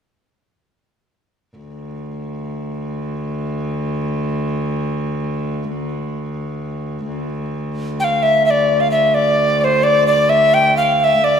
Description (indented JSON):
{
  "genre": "medieval",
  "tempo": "87 BPM (dotted quarters)",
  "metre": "6/8",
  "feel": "straight",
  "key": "D minor",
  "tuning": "A4 = 438 Hz",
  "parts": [
    { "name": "rich viola da gamba", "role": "drone", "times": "1.6-11.4 s", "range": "D2", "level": "-22 LUFS", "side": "equal", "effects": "none" },
    { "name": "breathy alto recorder", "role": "melody", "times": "8.0-11.4 s", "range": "C5 to G5", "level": "-12 LUFS", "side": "equal", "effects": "none" }
  ],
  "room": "wet recital hall reverb, RT60 1.7 s",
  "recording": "recorded in a church or concert hall",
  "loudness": "-16 LUFS",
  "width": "side -7 dB against mid",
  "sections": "1.6-7.1 A section; 7.1-11.4 B section",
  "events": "none",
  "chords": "none"
}